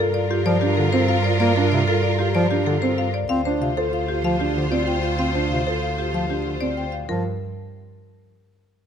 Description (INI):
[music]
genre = classical, minimalist pattern music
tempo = 190 BPM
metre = 6/4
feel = straight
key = G minor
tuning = A4 = 440 Hz
[part]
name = marimba with hard mallets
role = melody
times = 0.0-7.2 s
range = G4 to G5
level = -25 LUFS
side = left 10 dB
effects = none
[part]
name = mellow French horn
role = second line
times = 0.0-6.9 s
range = F4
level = -29 LUFS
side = right 3 dB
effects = none
[part]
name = clear studio string section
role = sustained chords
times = 0.0-6.9 s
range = F4 to C5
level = -27 LUFS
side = left 2 dB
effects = none
[part]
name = dark concert grand piano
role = arpeggios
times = 0.0-7.2 s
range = C4 to C5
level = -27 LUFS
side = right 5 dB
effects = none
[part]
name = clear double bass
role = bass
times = 0.0-7.2 s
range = D2 to G2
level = -25 LUFS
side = right 4 dB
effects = none
[part]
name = mellow bass clarinet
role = accompaniment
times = 0.5-7.2 s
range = C3 to C4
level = -26 LUFS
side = right 1 dB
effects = none
[sound]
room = light reverb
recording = close, detailed microphones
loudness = -19 LUFS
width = side -8 dB against mid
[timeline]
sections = 0.0-7.1 A section; 7.1-8.9 B section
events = none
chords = 0.0 Gm9; 3.3 Dm7; 7.1 G7(no3)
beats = 0.14 0.46 0.77 1.09 | 1.40 1.72 2.03 2.35 2.67 2.98 | 3.30 3.61 3.93 4.24 4.56 4.88 | 5.19 5.51 5.82 6.14 6.46 6.77 | 7.09